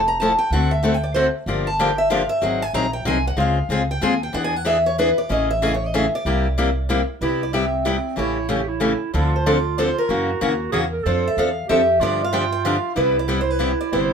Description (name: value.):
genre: acoustic string swing (jazz manouche).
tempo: 188 BPM.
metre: 3/4.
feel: swing 59% on 8ths.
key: C major from 7.2 s.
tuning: A4 = 441 Hz.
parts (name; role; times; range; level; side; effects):
picked acoustic archtop guitar; melody; 0.0-14.1 s; A4 to Bb5; -22 LUFS; equal; none.
upright bass; bass; 0.0-14.1 s; F1 to G2; -25 LUFS; right 1 dB; none.
picked steel-string acoustic guitar; accompaniment; 0.2-14.1 s; C3 to A4; -22 LUFS; left 2 dB; none.
breathy clarinet; second line; 7.2-14.1 s; C4 to A#4; -25 LUFS; right 10 dB; none.
room: moderate studio reverb, RT60 0.6 s.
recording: minimal, uncompressed stereo recording.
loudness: -18 LUFS.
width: side -6 dB against mid.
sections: 0.0-7.2 A section; 7.2-14.1 B section.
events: steel-string acoustic guitar solo 0.0-7.2.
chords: 0.0 Fmaj7; 0.5 D7; 1.5 Gm7; 2.4 Ab7; 3.4 Dbmaj7; 4.3 E7; 5.3 Amaj7; 6.3 C7; 7.2 Cmaj7; 8.2 A7; 9.1 Dm7; 10.1 F#7; 11.1 F6; 12.0 G7; 13.0 Cmaj7.